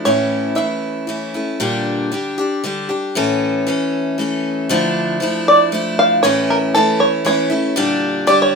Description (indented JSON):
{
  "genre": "folk",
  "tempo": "117 BPM",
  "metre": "3/4",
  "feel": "straight",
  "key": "D harmonic minor",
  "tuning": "A4 = 439 Hz",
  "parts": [
    { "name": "bluegrass banjo", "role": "melody", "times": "0.0-1.3, 5.5-8.6 s", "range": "A4 to F5", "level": "-14 LUFS", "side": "right 1 dB", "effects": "none" },
    { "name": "picked steel-string acoustic guitar", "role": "accompaniment", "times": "0.0-8.6 s", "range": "A2 to A4", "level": "-17 LUFS", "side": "left 1 dB", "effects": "none" }
  ],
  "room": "light reverb",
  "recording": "minimal, uncompressed stereo recording",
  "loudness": "-15 LUFS",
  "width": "side -4 dB against mid",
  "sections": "0.0-4.7 A section; 4.7-8.6 B section",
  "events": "five-string banjo solo 4.7-8.6",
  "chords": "0.1 A; 1.6 Gm/Bb; 3.1 A; 4.7 Dmadd9; 6.2 A; 7.8 Gm/Bb"
}